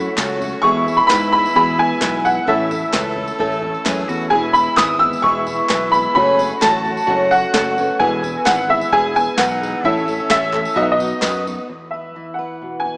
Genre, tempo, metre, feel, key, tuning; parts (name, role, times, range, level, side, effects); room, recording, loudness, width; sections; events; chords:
indie folk with a building arrangement; 130 BPM; 4/4; straight; E major; A4 = 440 Hz
rich cello; second line; 0.0-11.7 s; B3 to A4; -26 LUFS; equal
felt-muted upright piano; accompaniment; 0.0-11.7 s; F#1 to E5; -30 LUFS; equal
picked steel-string acoustic guitar; accompaniment; 0.0-11.7 s; E2 to A4; -24 LUFS; equal
mellow tonewheel organ; sustained chords; 0.0-11.7 s; A3 to E6; -29 LUFS; equal; slow rotary speaker
open-back banjo; arpeggios; 0.0-11.7 s; E4 to B4; -25 LUFS; right 1 dB
fingered electric bass; bass; 0.0-11.6 s; E1 to G#2; -28 LUFS; equal
soft vintage rhythm box; drums; 0.2-11.6 s; kick drum, snare drum, toms; -24 LUFS; equal
group handclap; percussion; 0.2-11.3 s; -27 LUFS; left 1 dB
tambourine; percussion; 0.2-11.6 s; -37 LUFS; right 1 dB
clear upright piano; melody; 0.6-13.0 s; D#5 to E6; -16 LUFS; equal
fingerpicked steel-string acoustic guitar; accompaniment; 11.7-13.0 s; E2 to B4; -30 LUFS; equal
moderate lush hall reverb, RT60 2.4 s; rough home demo mix, small speaker sound; -14 LUFS; side -28 dB against mid
0.0-11.7 A section; 11.7-13.0 B section
0.0 F#m; 0.6 E; 2.5 A; 4.3 E; 6.2 F#m; 8.0 E; 9.8 A; 10.8 B; 11.7 E5